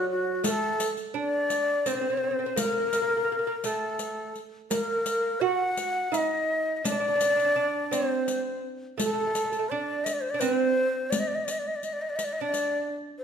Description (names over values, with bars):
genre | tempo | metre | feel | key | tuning
Persian modal ensemble | 84 BPM | 3/4 | straight | D dastgah homayun | A4 = 436 Hz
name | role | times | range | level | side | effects
breathy ney | melody | 0.0-13.2 s | F#4 to F#5 | -27 LUFS | left 2 dB | none
lute | second line | 0.0-12.9 s | F#3 to F#4 | -31 LUFS | right 8 dB | none
riq | percussion | 0.4-12.7 s | none | -33 LUFS | left 3 dB | none
room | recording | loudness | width
moderate scoring stage reverb, RT60 1.4 s | minimal, uncompressed stereo recording | -25 LUFS | side -7 dB against mid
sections
0.0-13.2 A section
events
none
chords
none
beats
| 0.44 1.15 1.86 | 2.57 3.29 4.00 | 4.71 5.42 6.13 | 6.85 7.56 8.27 | 8.98 9.70 10.41 | 11.12 11.83 12.55